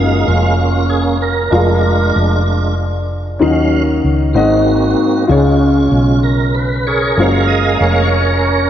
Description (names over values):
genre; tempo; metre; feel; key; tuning
slow gospel; 64 BPM (dotted quarters); 6/8; straight; F# major; A4 = 444 Hz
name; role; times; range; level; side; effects
warm baby grand piano; accompaniment; 0.0-8.7 s; G#2 to E#5; -16 LUFS; left 2 dB; lush chorus
tonewheel organ; sustained chords; 0.0-8.7 s; F#3 to E#5; -16 LUFS; right 3 dB; slow rotary speaker, overdrive, chorus vibrato
hollow-body short-scale fingered electric bass; bass; 0.0-8.7 s; E#1 to D#2; -15 LUFS; equal; none
room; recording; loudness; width
wet lush hall reverb, RT60 3.0 s; dreamy mix soaked in reverb; -11 LUFS; side -10 dB against mid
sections
0.0-8.7 A section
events
tonewheel organ solo 0.0-8.7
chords
0.0 F#maj7; 1.5 A#7/E#; 3.4 D#m7; 4.4 G#7; 5.3 C#; 7.2 F#maj7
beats
0.58 | 1.52 2.46 | 3.41 4.35 | 5.29 6.24 | 7.18 8.12